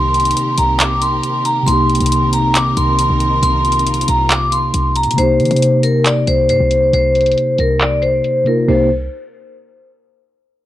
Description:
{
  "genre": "hip hop, trap",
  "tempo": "137 BPM",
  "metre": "4/4",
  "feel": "half-time",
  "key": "C minor",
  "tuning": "A4 = 439 Hz",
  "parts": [
    { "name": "vibraphone with hard mallets", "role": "melody", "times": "0.0-8.9 s", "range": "Bb4 to D6", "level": "-15 LUFS", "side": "left 1 dB", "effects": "none" },
    { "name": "mellow tine electric piano", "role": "accompaniment", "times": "0.0-8.9 s", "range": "C3 to G4", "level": "-18 LUFS", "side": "equal", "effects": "fast stereo tremolo" },
    { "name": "warm studio string section", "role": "sustained chords", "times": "0.0-5.2 s", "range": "Eb3 to Bb4", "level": "-25 LUFS", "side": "equal", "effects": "none" },
    { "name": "short 808-style bass", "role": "bass", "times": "0.0-9.1 s", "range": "C2 to Eb3", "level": "-20 LUFS", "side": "right 1 dB", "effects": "none" },
    { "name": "trap drum kit", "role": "drums", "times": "0.1-8.8 s", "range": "crash cymbal, handclaps, hi-hat", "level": "-19 LUFS", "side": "equal", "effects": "none" }
  ],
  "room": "little or no reverb",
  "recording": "dry, gritty hardware recording, low-pass filter",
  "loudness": "-12 LUFS",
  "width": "side -14 dB against mid",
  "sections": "0.0-5.2 A section; 5.2-8.7 B section; 8.7-10.4 C section",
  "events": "none",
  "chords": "0.0 Cm7",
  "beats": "0.36 0.80 1.24 | 1.68 2.11 2.55 2.99 | 3.43 3.87 4.30 4.74 | 5.18 5.62 6.06 6.49 | 6.93 7.37 7.81 8.25 | 8.68"
}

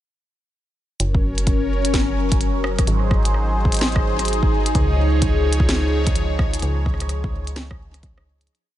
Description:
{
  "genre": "IDM",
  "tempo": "128 BPM",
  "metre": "4/4",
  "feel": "swing 62% on 16ths",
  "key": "Db major",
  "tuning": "A4 = 443 Hz",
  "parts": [
    { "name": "phased analog pad", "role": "sustained chords", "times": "1.0-8.5 s", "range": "F3 to Db5", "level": "-23 LUFS", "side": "left 1 dB", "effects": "phaser, chorus" },
    { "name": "metallic FM bass", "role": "bass", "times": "1.0-8.5 s", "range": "Gb1 to Db2", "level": "-22 LUFS", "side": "equal", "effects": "tube saturation" },
    { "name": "glitchy drum kit", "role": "drums", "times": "1.0-8.6 s", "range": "hi-hat, rim click, snare drum", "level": "-27 LUFS", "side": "right 1 dB", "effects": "digital delay" },
    { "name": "electronic kick drum", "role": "drums", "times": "1.1-8.1 s", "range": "none", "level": "-21 LUFS", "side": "equal", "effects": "none" }
  ],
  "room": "little or no reverb",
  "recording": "nothing above 11.0 kHz",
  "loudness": "-17 LUFS",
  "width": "side -13 dB against mid",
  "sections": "1.0-8.5 groove",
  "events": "fade-out 6.0-8.5",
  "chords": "1.0 Gb; 2.9 Ab7; 4.8 Dbadd9",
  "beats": "| 1.00 1.47 1.94 2.41 | 2.88 3.34 3.81 4.28 | 4.75 5.22 5.69 6.16 | 6.62 7.09 7.56 8.03"
}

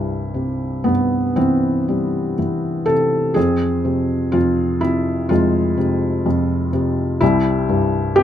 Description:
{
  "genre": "classical, lyrical solo piano",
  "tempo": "58-65 BPM",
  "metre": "4/4",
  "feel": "rubato",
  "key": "C major",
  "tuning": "A4 = 440 Hz",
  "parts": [
    { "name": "felt-muted upright piano", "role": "solo", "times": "0.0-8.2 s", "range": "C2 to A4", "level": "-16 LUFS", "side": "equal", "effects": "none" }
  ],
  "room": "light reverb",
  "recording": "close, detailed microphones",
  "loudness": "-16 LUFS",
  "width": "side -10 dB against mid",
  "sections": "0.0-8.2 A section",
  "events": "none",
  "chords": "0.0 C; 3.4 Fm; 7.2 C",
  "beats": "0.34 1.38 2.38 | 3.36 4.34 5.31 6.26 | 7.21 8.16"
}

